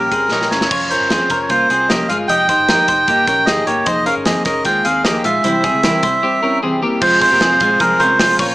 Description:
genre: jangly indie pop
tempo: 152 BPM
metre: 4/4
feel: straight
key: F minor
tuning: A4 = 440 Hz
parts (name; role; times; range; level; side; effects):
- melodica; melody; 0.0-8.4 s; Bb4 to G5; -14 LUFS; right 1 dB; none
- picked steel-string acoustic guitar; accompaniment; 0.0-8.5 s; C3 to Eb5; -23 LUFS; right 1 dB; none
- twelve-string electric guitar; arpeggios; 0.0-8.5 s; Ab3 to Eb5; -19 LUFS; left 2 dB; none
- vintage muted fingered electric bass; bass; 0.0-8.5 s; F1 to Eb2; -32 LUFS; equal; none
- modern studio drum kit; drums; 0.1-8.5 s; crash cymbal, hi-hat, kick drum, snare drum; -20 LUFS; equal; none
- combo organ; accompaniment; 7.0-8.5 s; Db4 to C5; -25 LUFS; right 2 dB; none
room: light reverb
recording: small speaker sound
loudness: -12 LUFS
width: side -18 dB against mid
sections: 0.7-7.0 A section; 7.0-8.5 B section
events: drum fill 0.3-0.7; break 6.2-7.0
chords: 0.0 Bbmadd9; 2.3 Abadd9/F; 5.4 C; 7.0 Fm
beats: 0.32 | 0.71 1.11 1.50 1.90 | 2.29 2.69 3.08 3.47 | 3.87 4.26 4.66 5.05 | 5.44 5.84 6.23 6.62 | 7.02 7.41 7.80 8.20

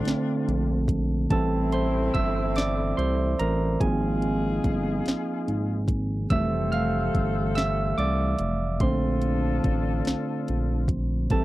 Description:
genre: slow six-eight R&B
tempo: 48 BPM (dotted quarters)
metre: 6/8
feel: straight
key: unclear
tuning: A4 = 440 Hz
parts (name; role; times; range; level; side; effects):
- barky tine electric piano; accompaniment; 0.0-11.4 s; D3 to F6; -26 LUFS; right 2 dB; none
- warm horn section; stabs; 0.0-11.4 s; A3 to C5; -33 LUFS; left 7 dB; none
- smooth synth bass; bass; 0.0-11.4 s; F1 to C2; -27 LUFS; equal; none
- smooth R&B drum kit; drums; 0.1-11.4 s; hi-hat, kick drum, snare drum; -26 LUFS; equal; none
room: little or no reverb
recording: dry, close 1970s-style studio recording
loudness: -23 LUFS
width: side -17 dB against mid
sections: 0.0-11.4 A section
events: tine electric piano solo 0.0-11.4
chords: 0.0 Bbmaj9; 1.3 Am7; 3.8 Ab69; 6.3 Fmaj9; 8.8 Bbmaj9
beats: 0.06 | 1.30 2.56 | 3.81 5.05 | 6.30 7.55 | 8.80 10.05 | 11.30

